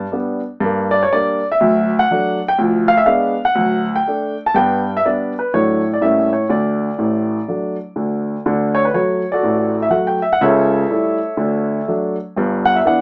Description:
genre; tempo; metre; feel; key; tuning
jazz, stride piano; 123 BPM; 4/4; swing 60% on 8ths; D major; A4 = 439 Hz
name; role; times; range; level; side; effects
warm grand piano; solo; 0.0-13.0 s; G1 to A5; -17 LUFS; equal; none
room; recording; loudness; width
moderate booth ambience, RT60 0.2 s; small speaker sound; -17 LUFS; mono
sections
0.0-8.5 A section; 8.5-13.0 A section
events
none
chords
0.0 G; 0.6 Gm; 1.6 D; 2.6 Ddim7; 3.6 D; 4.5 G; 5.5 D/A; 6.0 A7b9; 6.5 D; 10.4 A7/C#; 11.4 D; 12.4 G6

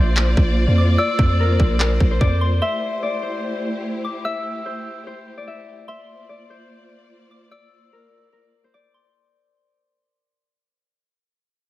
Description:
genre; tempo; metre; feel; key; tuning
hip hop, trap; 147 BPM; 4/4; half-time; unclear; A4 = 440 Hz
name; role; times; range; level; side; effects
Celtic harp; melody; 0.0-10.6 s; Bb4 to E5; -27 LUFS; left 4 dB; low-pass filter, digital delay
soft synth bell; second line; 0.0-9.1 s; C6 to E6; -29 LUFS; right 1 dB; chorus, phaser, digital delay
dark studio string section; sustained chords; 0.0-9.1 s; A3 to D5; -26 LUFS; equal; none
long sustained 808-style bass; bass; 0.0-2.6 s; Bb1 to F2; -18 LUFS; equal; none
trap drum kit; drums; 0.2-2.3 s; handclaps, kick drum; -18 LUFS; equal; overdrive
room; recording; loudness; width
digital ambience; none; -17 LUFS; side -16 dB against mid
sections
0.0-9.1 A section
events
break 0.0-2.6; fade-out 0.0-9.1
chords
0.0 Bbadd9; 2.6 Am7; 5.9 Bbadd9

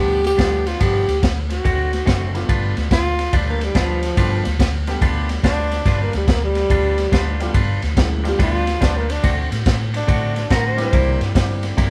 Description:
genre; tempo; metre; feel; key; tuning
electric blues shuffle; 142 BPM; 4/4; swing 66% on 8ths; G mixolydian; A4 = 442 Hz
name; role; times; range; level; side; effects
breathy tenor saxophone; melody; 0.0-11.2 s; F3 to C5; -24 LUFS; equal; none
clean electric guitar; riff; 0.0-11.9 s; G2 to B4; -29 LUFS; equal; spring reverb
vintage muted fingered electric bass; bass; 0.0-11.9 s; F#1 to A2; -24 LUFS; equal; none
crunchy breakbeat drum kit; drums; 0.2-11.9 s; kick drum, ride cymbal, snare drum; -22 LUFS; equal; none
clear baby grand piano; accompaniment; 0.4-11.9 s; G2 to G4; -30 LUFS; equal; none
room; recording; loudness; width
light reverb; band playing live in one room; -19 LUFS; mono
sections
0.0-2.5 A section; 2.5-11.9 B section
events
tenor saxophone solo 2.5-11.9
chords
0.0 G7; 1.7 D7; 2.5 G7; 9.2 D7; 10.9 C7

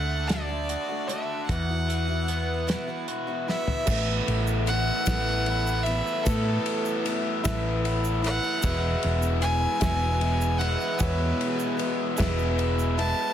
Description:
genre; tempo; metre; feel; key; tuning
folk rock and heartland rock; 50 BPM (dotted quarters); 6/8; straight; unclear; A4 = 440 Hz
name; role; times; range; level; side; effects
rich fiddle; melody; 0.0-13.3 s; A4 to A5; -30 LUFS; right 1 dB; none
picked steel-string acoustic guitar; accompaniment; 0.0-13.3 s; E2 to F#4; -32 LUFS; left 3 dB; none
overdriven electric guitar; riff; 0.0-13.3 s; E2 to F#4; -30 LUFS; right 1 dB; spring reverb
hollow-body short-scale fingered electric bass; bass; 0.0-13.1 s; E1 to A2; -27 LUFS; equal; none
damped 70s drum kit; drums; 0.3-13.2 s; crash cymbal, hi-hat, kick drum, ride cymbal, snare drum, toms; -31 LUFS; left 1 dB; none
dark concert grand piano; accompaniment; 3.9-13.1 s; G#4 to E5; -38 LUFS; right 2 dB; none
egg shaker; percussion; 3.9-13.0 s; none; -40 LUFS; right 8 dB; none
room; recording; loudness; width
light reverb, studio reverb; dense, heavily limited modern master; -23 LUFS; side -10 dB against mid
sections
0.0-3.9 A section; 3.9-13.3 B section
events
drum fill 3.5-3.9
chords
0.0 D; 1.5 Esus2; 3.9 Asus2; 8.6 E

